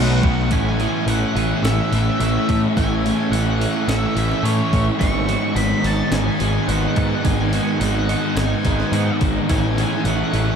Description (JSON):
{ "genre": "rock, shoegaze and dream pop", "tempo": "107 BPM", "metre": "4/4", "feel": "straight", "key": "A lydian", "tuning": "A4 = 440 Hz", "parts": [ { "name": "octave-fuzz lead guitar", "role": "melody", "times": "0.0-10.6 s", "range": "C#5 to C#6", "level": "-28 LUFS", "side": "left 1 dB", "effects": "distortion, ping-pong delay" }, { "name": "warm analog pad", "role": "sustained chords", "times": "0.0-0.5 s", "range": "F#5 to D#6", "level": "-41 LUFS", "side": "right 1 dB", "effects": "none" }, { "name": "twelve-string electric guitar", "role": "arpeggios", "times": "0.0-10.6 s", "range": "D#3 to G#4", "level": "-31 LUFS", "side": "right 9 dB", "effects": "lush chorus, ping-pong delay" }, { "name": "overdriven electric guitar", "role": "riff", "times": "0.0-10.6 s", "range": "G#2 to E4", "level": "-23 LUFS", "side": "right 10 dB", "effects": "reverse reverb" }, { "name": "thick fuzz guitar", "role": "riff", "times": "0.0-10.6 s", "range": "G#2 to B3", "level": "-22 LUFS", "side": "left 7 dB", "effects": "distortion, lush chorus" }, { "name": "growling picked electric bass", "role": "bass", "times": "0.0-10.5 s", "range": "G#1 to A2", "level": "-21 LUFS", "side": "equal", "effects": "overdrive" }, { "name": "clean 12-bit digital drum machine", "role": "drums", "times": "0.2-10.5 s", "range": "hi-hat, kick drum, snare drum", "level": "-25 LUFS", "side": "equal", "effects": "none" } ], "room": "wet huge ambient reverb, RT60 8.1 s", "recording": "dreamy mix soaked in reverb", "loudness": "-17 LUFS", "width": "side -7 dB against mid", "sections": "0.5-10.6 A section", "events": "none", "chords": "0.0 B7; 0.5 Amaj7; 5.0 G#m7; 9.5 Amaj7" }